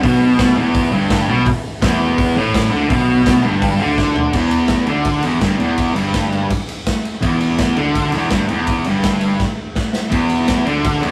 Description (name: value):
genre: garage rock duo or trio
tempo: 166 BPM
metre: 4/4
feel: straight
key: unclear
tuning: A4 = 440 Hz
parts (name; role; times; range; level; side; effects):
- fuzz guitar; riff; 0.0-11.1 s; E2 to D3; -18 LUFS; equal; distortion
- modern bright fingered electric bass; bass; 0.0-11.1 s; E1 to D2; -29 LUFS; equal; none
- raw garage drum kit; drums; 0.0-11.1 s; crash cymbal, hi-hat, kick drum, ride cymbal, snare drum, toms; -22 LUFS; equal; none
room: moderate studio reverb, RT60 0.6 s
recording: rough rehearsal-room recording, tube saturation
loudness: -16 LUFS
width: mono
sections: 0.0-4.3 A section; 4.3-11.1 B section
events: drum fill 4.0-4.3, 9.4-10.1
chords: 0.0 E5; 4.3 Em7